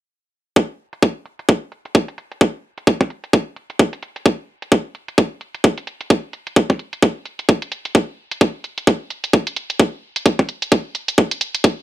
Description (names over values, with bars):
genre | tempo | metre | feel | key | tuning
house | 130 BPM | 4/4 | swing 58% on 16ths | none | none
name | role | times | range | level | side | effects
electronic hi-hat | drums | 0.6-11.7 s | none | -26 LUFS | right 3 dB | overdrive, low-pass filter on hats
electronic kick drum | drums | 0.6-11.7 s | none | -13 LUFS | equal | overdrive, high-pass filter on kick
room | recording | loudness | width
little or no reverb | dark, warm production | -17 LUFS | side -14 dB against mid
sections
0.6-11.8 A section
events
filter sweep on drum 0.6-11.8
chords
none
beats
| 0.56 1.03 1.49 1.95 | 2.41 2.87 3.33 3.79 | 4.26 4.72 5.18 5.64 | 6.10 6.56 7.03 7.49 | 7.95 8.41 8.87 9.33 | 9.79 10.26 10.72 11.18 | 11.64